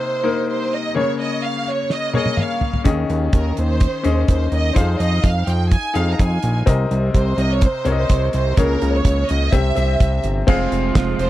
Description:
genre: piano-driven pop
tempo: 126 BPM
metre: 4/4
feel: straight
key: F minor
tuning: A4 = 443 Hz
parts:
  - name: rich studio violin section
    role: melody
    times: 0.0-11.3 s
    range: Bb4 to Bb5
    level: -24 LUFS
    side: right 4 dB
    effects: none
  - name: bright upright piano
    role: accompaniment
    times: 0.0-11.3 s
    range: C3 to F5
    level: -22 LUFS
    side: left 5 dB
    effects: none
  - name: damped 70s drum kit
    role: drums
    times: 1.9-11.3 s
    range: crash cymbal, hi-hat, kick drum, snare drum, toms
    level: -17 LUFS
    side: equal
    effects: none
  - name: fat analog bass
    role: bass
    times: 2.9-11.3 s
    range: F1 to F2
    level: -19 LUFS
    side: equal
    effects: none
  - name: rich studio string section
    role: sustained chords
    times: 10.5-11.3 s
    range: C3 to F4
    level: -28 LUFS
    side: right 3 dB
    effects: none
  - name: direct-recorded clean electric guitar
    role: riff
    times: 10.5-11.3 s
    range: F2 to F4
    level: -23 LUFS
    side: right 12 dB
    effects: none
room: little or no reverb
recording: dry, close 1970s-style studio recording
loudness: -16 LUFS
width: side -14 dB against mid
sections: 0.0-10.5 A section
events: drum fill 1.9-2.9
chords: 0.0 Cm7; 0.9 Bbm7/Db; 2.9 Eb7sus4; 4.8 Fm7; 6.7 Cm7; 8.6 Bbm7/Db; 9.5 C; 10.5 Fm

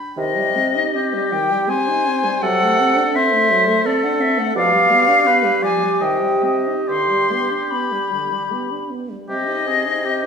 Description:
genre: classical, slow romantic movement for wind quintet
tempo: 67-86 BPM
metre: 3/4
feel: rubato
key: C minor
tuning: A4 = 442 Hz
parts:
  - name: warm oboe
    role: second line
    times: 0.0-10.3 s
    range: G4 to B5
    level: -23 LUFS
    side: equal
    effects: none
  - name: bright silver concert flute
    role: melody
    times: 0.2-10.3 s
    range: D5 to C6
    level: -18 LUFS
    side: left 2 dB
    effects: none
  - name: mellow French horn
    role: accompaniment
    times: 0.2-10.3 s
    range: D3 to Eb4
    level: -24 LUFS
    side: equal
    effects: none
  - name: mellow clarinet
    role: accompaniment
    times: 0.2-10.3 s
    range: G4 to C5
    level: -25 LUFS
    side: right 7 dB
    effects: none
  - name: mellow bassoon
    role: bass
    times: 0.2-10.3 s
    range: G2 to C3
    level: -25 LUFS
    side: left 2 dB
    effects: none
room: wet recital hall reverb, RT60 1.5 s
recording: studio reverb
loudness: -15 LUFS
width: side -6 dB against mid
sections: 0.2-10.3 A section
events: none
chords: 0.2 Cm; 2.4 D7/C; 4.5 G7/B; 6.0 Cm; 6.9 G; 9.3 Cm

